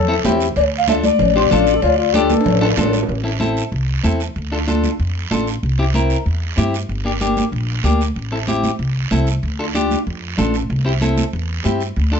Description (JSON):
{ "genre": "latin, cumbia", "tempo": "189 BPM", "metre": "4/4", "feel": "straight", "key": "D minor", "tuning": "A4 = 441 Hz", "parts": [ { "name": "clear trombone", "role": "second line", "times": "0.0-2.8 s", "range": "E4 to A4", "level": "-22 LUFS", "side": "left 8 dB", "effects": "none" }, { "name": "upright bass", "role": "bass", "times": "0.0-12.2 s", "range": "G1 to G2", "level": "-20 LUFS", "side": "equal", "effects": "none" }, { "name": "clean electric guitar", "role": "accompaniment", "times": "0.1-12.2 s", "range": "Bb3 to C5", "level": "-20 LUFS", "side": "left 2 dB", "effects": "none" }, { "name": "congas", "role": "percussion", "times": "0.2-11.8 s", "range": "none", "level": "-23 LUFS", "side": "right 3 dB", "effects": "none" }, { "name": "cowbell and timbales", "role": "percussion", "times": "0.2-3.1 s", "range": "none", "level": "-24 LUFS", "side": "right 6 dB", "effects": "none" }, { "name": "guiro", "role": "percussion", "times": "0.2-12.2 s", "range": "none", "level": "-29 LUFS", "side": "right 9 dB", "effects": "none" }, { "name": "breathy alto ocarina", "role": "melody", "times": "0.6-2.7 s", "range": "D5 to F5", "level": "-17 LUFS", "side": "left 6 dB", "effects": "none" } ], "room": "moderate studio reverb, RT60 0.8 s", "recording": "nothing above 8.0 kHz", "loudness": "-15 LUFS", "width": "side -6 dB against mid", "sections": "0.0-3.1 A section; 3.1-12.2 B section", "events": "drum fill 2.3-3.1", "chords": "0.0 Am; 0.6 Dm; 3.1 Am; 4.4 Dm; 5.6 C; 6.9 Gm; 8.2 Am; 9.4 Dm; 10.7 C" }